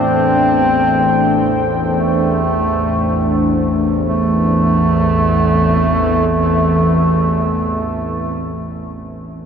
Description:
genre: dark ambient drone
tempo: free time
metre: none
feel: none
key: A minor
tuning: A4 = 439 Hz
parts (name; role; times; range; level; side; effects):
- mellow duduk; melody; 0.0-8.5 s; A3 to C4; -17 LUFS; right 1 dB; ping-pong delay
- deep dark ambient pad; sustained chords; 0.0-8.8 s; A3 to G5; -19 LUFS; left 1 dB; chorus, built-in reverb
- bowed-like drone; drone; 0.0-8.5 s; A1 to E2; -17 LUFS; equal; built-in reverb
- bronze singing bowl; texture; 0.0-4.1 s; none; barely audible; none; none
room: wet cathedral reverb, RT60 5.3 s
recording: worn, warbling old tape, cassette tape, warbly pitch drift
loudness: -13 LUFS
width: side -7 dB against mid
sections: 0.0-4.1 A section; 4.1-8.3 B section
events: none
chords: 0.0 D5/A; 4.1 Am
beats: free time

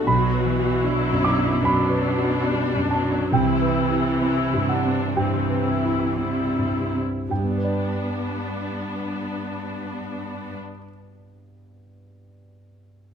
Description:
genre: cinematic, emotional film score for orchestra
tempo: 53-78 BPM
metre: 4/4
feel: rubato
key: G major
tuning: A4 = 442 Hz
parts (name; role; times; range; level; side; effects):
- dark concert grand piano; accompaniment; 0.0-13.1 s; B1 to D6; -23 LUFS; right 1 dB; none
- rich studio viola section; accompaniment; 0.0-10.6 s; E3 to F#4; -26 LUFS; left 3 dB; none
- warm studio cello section; bass; 0.0-10.5 s; G2 to C3; -27 LUFS; right 1 dB; none
room: light reverb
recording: close, detailed microphones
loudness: -20 LUFS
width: side -7 dB against mid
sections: 0.0-7.3 A section; 7.3-11.6 B section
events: slowing down 0.0-7.3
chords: 0.1 Bm; 3.3 Cmaj7; 7.3 G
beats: | 0.07 0.85 1.65 2.46 | 3.32 4.22 5.16 6.19 | 7.30 8.39 9.47 10.56

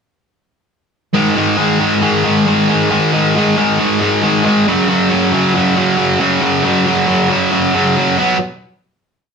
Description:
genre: rock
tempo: 136 BPM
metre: 4/4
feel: straight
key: unclear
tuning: A4 = 440 Hz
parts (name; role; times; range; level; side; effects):
- sludgy distorted guitar; solo; 1.1-8.4 s; F#2 to B3; -11 LUFS; equal; overdrive
room: wet studio reverb, RT60 0.6 s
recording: band playing live in one room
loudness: -11 LUFS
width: side -6 dB against mid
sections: 1.1-8.2 pre-chorus; 8.2-9.3 final chord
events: none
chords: 1.1 G#5; 4.7 F#5; 8.2 B5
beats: | 1.14 1.58 2.02 2.46 | 2.90 3.34 3.78 4.22 | 4.66 5.10 5.54 5.98 | 6.42 6.87 7.30 7.75 | 8.19

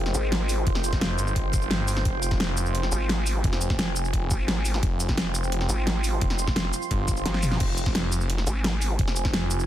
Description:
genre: dark technical drum and bass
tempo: 173 BPM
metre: 4/4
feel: straight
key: F minor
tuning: A4 = 440 Hz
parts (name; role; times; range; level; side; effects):
- deep dark ambient pad; sustained chords; 0.0-9.7 s; F4 to C6; -32 LUFS; right 2 dB; chorus, built-in reverb, sidechain pumping
- snarling distorted saw bass; bass; 0.0-9.7 s; F1 to G1; -27 LUFS; equal; distortion, tube saturation
- warbly tape-like pad; texture; 0.0-7.6 s; F4 to Eb5; -39 LUFS; equal; none
- vowel-sweep wobble bass; bass; 0.1-0.7, 2.9-9.0 s; G1 to Ab1; -26 LUFS; equal; chorus, tube saturation
- dubstep drum kit; drums; 0.1-9.7 s; crash cymbal, hi-hat, shaker, snare drum, toms; -28 LUFS; equal; studio reverb
- electronic kick drum; drums; 0.7-9.3 s; none; -26 LUFS; equal; studio reverb
room: digital ambience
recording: dense, heavily limited modern master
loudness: -22 LUFS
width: side -12 dB against mid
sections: 0.0-7.6 A section; 7.6-9.7 A section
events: drop 0.0-7.6, 7.6-9.7; kick drops out 7.3-7.6; drum fill 7.3-7.6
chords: 0.0 Fm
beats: 0.32 | 0.67 1.01 1.36 1.71 | 2.05 2.40 2.75 3.09 | 3.44 3.79 4.13 4.48 | 4.83 5.17 5.52 5.87 | 6.21 6.56 6.91 7.26 | 7.60 7.95 8.30 8.64 | 8.99 9.34

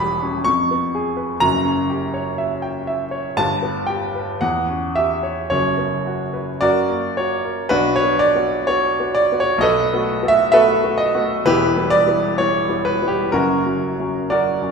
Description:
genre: classical, romantic character piece for solo piano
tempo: 54-66 BPM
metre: 2/4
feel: rubato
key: B minor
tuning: A4 = 441 Hz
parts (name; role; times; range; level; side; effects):
- warm grand piano; solo; 0.0-14.7 s; E1 to C#6; -16 LUFS; equal; none
room: wet recital hall reverb, RT60 1.5 s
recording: recorded in a church or concert hall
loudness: -16 LUFS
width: side -5 dB against mid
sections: 0.0-7.7 A section; 7.7-14.7 B section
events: none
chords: 0.5 C#7/E#; 1.4 F#7b9; 3.4 G; 4.4 C#dim/E; 5.5 F#sus4; 6.6 F#; 7.7 Bm; 9.6 B5; 11.4 Em; 13.3 F#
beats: 0.47 | 1.43 2.40 | 3.39 4.43 | 5.52 6.62 | 7.69 8.66 | 9.61 10.52 | 11.44 12.36 | 13.32 14.29

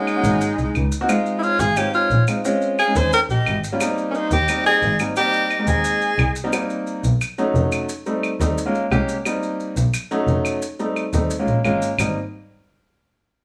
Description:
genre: Afro-Cuban jazz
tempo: 176 BPM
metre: 4/4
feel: straight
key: Ab major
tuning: A4 = 437 Hz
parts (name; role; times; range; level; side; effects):
- breathy tenor saxophone; melody; 0.0-6.4 s; Ab3 to C5; -22 LUFS; equal; plate reverb
- breathy jazz flute; second line; 0.0-6.4 s; Eb4 to Ab5; -27 LUFS; equal; none
- warm grand piano; accompaniment; 0.0-12.2 s; F#3 to G4; -25 LUFS; equal; none
- claves; percussion; 0.1-12.1 s; none; -28 LUFS; equal; none
- maracas; percussion; 0.1-12.1 s; none; -38 LUFS; equal; none
- dark double bass; bass; 0.2-12.1 s; F1 to Eb2; -24 LUFS; equal; none
room: moderate studio reverb, RT60 0.9 s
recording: small room ambience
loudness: -20 LUFS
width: mono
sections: 0.0-6.5 A section; 6.5-12.0 B section; 12.0-13.4 C section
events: none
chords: 0.4 Ab7; 1.1 Dbmaj7; 2.4 Bbm7 (rootless); 3.1 Eb7; 3.8 Abmaj7; 6.5 Cm7; 7.2 B7 (rootless); 7.9 F7 (rootless); 8.6 Eb9sus4 (rootless); 9.3 Cm7; 9.9 B7 (rootless); 10.6 F7 (rootless); 11.3 Eb9sus4 (rootless); 12.0 Abmaj7 (rootless)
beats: 0.07 0.41 0.75 | 1.09 1.43 1.77 2.11 | 2.45 2.79 3.12 3.46 | 3.81 4.14 4.49 4.83 | 5.17 5.51 5.85 6.19 | 6.53 6.87 7.21 7.55 | 7.89 8.23 8.57 8.91 | 9.26 9.60 9.94 10.28 | 10.62 10.96 11.30 11.65 | 11.99

